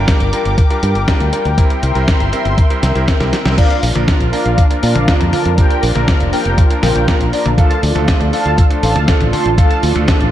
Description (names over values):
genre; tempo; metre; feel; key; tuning
italo disco; 120 BPM; 4/4; straight; unclear; A4 = 440 Hz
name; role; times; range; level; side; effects
lush unison pad; sustained chords; 0.0-10.3 s; D4 to D6; -20 LUFS; left 1 dB; chorus, phaser
bright electric grand piano; stabs; 0.0-10.3 s; F3 to Bb4; -22 LUFS; right 3 dB; ping-pong delay
fingered electric bass; bass; 0.0-10.3 s; F1 to Bb2; -16 LUFS; equal; tube saturation
dusty soul sampler-style drum kit; drums; 0.1-10.3 s; crash cymbal, hi-hat, snare drum, toms; -20 LUFS; left 1 dB; gated reverb
electronic kick drum; drums; 0.1-10.2 s; none; -13 LUFS; equal; none
mellow synth brass; melody; 3.6-9.8 s; Bb4 to C6; -20 LUFS; left 1 dB; chorus, tape echo
room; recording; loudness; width
light reverb, digital ambience; none; -11 LUFS; side -12 dB against mid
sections
0.0-3.6 A section; 3.6-10.3 B section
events
drum fill 3.2-3.6; band accent 3.5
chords
0.0 Gm7; 1.6 C7; 3.6 Bb; 7.6 Dm